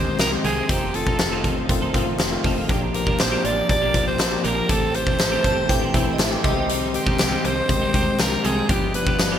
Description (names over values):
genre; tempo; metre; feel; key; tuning
1980s-style pop; 120 BPM; 4/4; straight; unclear; A4 = 440 Hz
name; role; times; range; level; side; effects
raspy alto saxophone; melody; 0.0-9.4 s; G4 to D5; -25 LUFS; right 1 dB; shimmer reverb
tine electric piano; accompaniment; 0.0-9.4 s; Eb3 to G4; -26 LUFS; left 3 dB; medium stereo tremolo, shimmer reverb
string machine, cellos; sustained chords; 0.0-9.4 s; Ab3 to D6; -32 LUFS; equal; none
twelve-string electric guitar; riff; 0.0-9.4 s; Eb3 to A4; -29 LUFS; right 3 dB; ensemble chorus, shimmer reverb
slap-like FM bass; bass; 0.0-9.4 s; F1 to D2; -30 LUFS; equal; none
huge arena drum kit; drums; 0.2-9.3 s; hi-hat, kick drum, snare drum, tambourine; -22 LUFS; equal; none
group handclap; percussion; 0.2-9.3 s; none; barely audible; none; none
shimmering bell with halo; second line; 5.4-6.8 s; Eb5 to A5; -32 LUFS; right 5 dB; ensemble chorus, shimmer reverb, digital delay
room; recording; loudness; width
moderate lush hall reverb, RT60 1.8 s, studio ambience; bright 1980s-style digital production; -18 LUFS; side -9 dB against mid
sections
0.0-9.4 A section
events
none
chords
0.0 Abmaj7/C; 0.7 F7; 2.7 Bb6; 4.7 Am7; 6.4 Abmaj7/C; 8.7 G7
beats
0.20 | 0.69 1.20 1.70 2.19 | 2.69 3.19 3.69 4.20 | 4.70 5.20 5.70 6.20 | 6.70 7.20 7.70 8.20 | 8.70 9.20